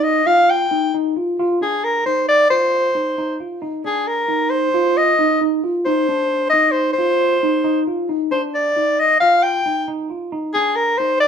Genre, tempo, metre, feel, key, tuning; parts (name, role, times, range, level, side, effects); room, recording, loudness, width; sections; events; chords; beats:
progressive instrumental, progressive; 134 BPM; 5/4; straight; F dorian; A4 = 440 Hz
warm soprano saxophone; melody; 0.0-11.3 s; Ab4 to G5; -16 LUFS; left 2 dB
overdriven tine electric piano; arpeggios; 0.0-11.3 s; D4 to F4; -21 LUFS; right 2 dB; phaser
moderate studio reverb, RT60 0.8 s; band playing live in one room; -15 LUFS; side -7 dB against mid
0.0-11.3 A section
0.0 F7(no3)
0.04 0.49 0.94 | 1.39 1.83 2.28 2.73 3.17 | 3.62 4.07 4.52 4.96 5.41 | 5.86 6.30 6.75 7.20 7.64 | 8.09 8.54 8.98 9.43 9.88 | 10.32 10.77 11.22